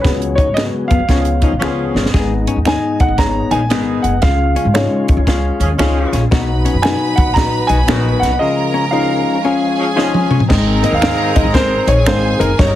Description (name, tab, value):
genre	uptempo 1960s-style soul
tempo	115 BPM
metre	4/4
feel	swing 64% on 8ths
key	unclear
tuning	A4 = 440 Hz
part	warm concert grand piano	melody	0.0-12.8 s	A#4 to A#5	-19 LUFS	right 1 dB	plate reverb
part	barky tine electric piano	accompaniment	0.0-12.8 s	G2 to G#5	-20 LUFS	left 4 dB	overdrive, plate reverb
part	bright tonewheel organ	sustained chords	0.0-12.8 s	D#3 to E#4	-27 LUFS	right 1 dB	fast rotary speaker, chorus vibrato, plate reverb
part	upright bass	bass	0.0-12.8 s	F#1 to G#2	-17 LUFS	equal	none
part	compact cocktail drum kit	drums	0.0-12.7 s	crash cymbal, hi-hat, kick drum, snare drum, toms	-16 LUFS	equal	none
part	hollow-body jazz guitar	riff	0.4-12.5 s	A#3 to G#4	-22 LUFS	left 7 dB	none
part	finger snap	percussion	0.6-12.2 s	none	-20 LUFS	right 5 dB	none
part	warm horn section	second line	1.1-12.8 s	D#3 to A#4	-24 LUFS	right 1 dB	plate reverb
part	rich studio violin section	second line	6.3-12.8 s	G#4 to B5	-22 LUFS	right 2 dB	plate reverb
room	light reverb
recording	heavily compressed radio sound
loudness	-12 LUFS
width	side -13 dB against mid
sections	0.0-2.1 A section; 2.1-10.5 B section; 10.5-12.8 C section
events	band accent 0.0-2.1; drum fill 1.6-2.1, 10.0-10.5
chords	0.0 C#7sus4; 1.1 C#7; 2.1 G#m; 4.2 C#; 6.3 B; 8.4 C#; 10.5 G#